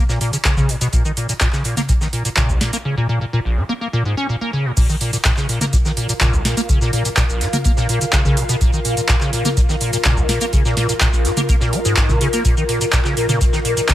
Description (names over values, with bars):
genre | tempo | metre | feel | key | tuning
acid house | 125 BPM | 4/4 | straight | Bb minor | A4 = 440 Hz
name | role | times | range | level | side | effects
liquid acid bass | riff | 0.0-13.9 s | Bb1 to Db4 | -20 LUFS | equal | tube saturation, analog chorus, sidechain pumping, dub echo
booming analog drum machine | drums | 0.1-13.9 s | crash cymbal, handclaps, hi-hat, shaker, snare drum, toms | -21 LUFS | equal | none
damped 70s drum kit | drums | 0.1-13.9 s | hi-hat, snare drum | -32 LUFS | right 3 dB | none
electronic kick drum | drums | 0.5-13.9 s | none | -17 LUFS | equal | none
ethereal airy pad | texture | 5.5-13.9 s | F4 to F5 | -24 LUFS | left 1 dB | ensemble chorus, built-in reverb, sidechain pumping
room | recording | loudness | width
light reverb | none | -15 LUFS | side -13 dB against mid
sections
0.0-4.8 A section; 4.8-13.9 B section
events
drop 4.8-13.9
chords
0.0 Bbm